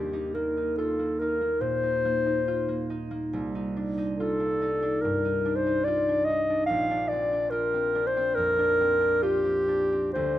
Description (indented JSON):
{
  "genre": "classical, impressionist duo for clarinet and harp",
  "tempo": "71 BPM",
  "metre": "4/4",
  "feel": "rubato",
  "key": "unclear",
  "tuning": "A4 = 440 Hz",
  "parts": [
    { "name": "mellow clarinet", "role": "melody", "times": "0.0-10.4 s", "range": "G4 to F5", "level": "-24 LUFS", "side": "left 1 dB", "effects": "none" },
    { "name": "concert harp", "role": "accompaniment", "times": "0.0-10.4 s", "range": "Bb1 to F4", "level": "-30 LUFS", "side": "right 2 dB", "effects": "none" }
  ],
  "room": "moderate recital hall reverb, RT60 1.6 s",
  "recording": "none",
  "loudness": "-24 LUFS",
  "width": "side -13 dB against mid",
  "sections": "0.0-10.4 A section",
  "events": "none",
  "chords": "0.0 Ebsus2; 3.3 Cm11; 6.7 Bb69",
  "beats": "0.77 1.62 2.48 | 3.34 4.19 5.02 5.86 | 6.68 7.51 8.36 9.22 | 10.14"
}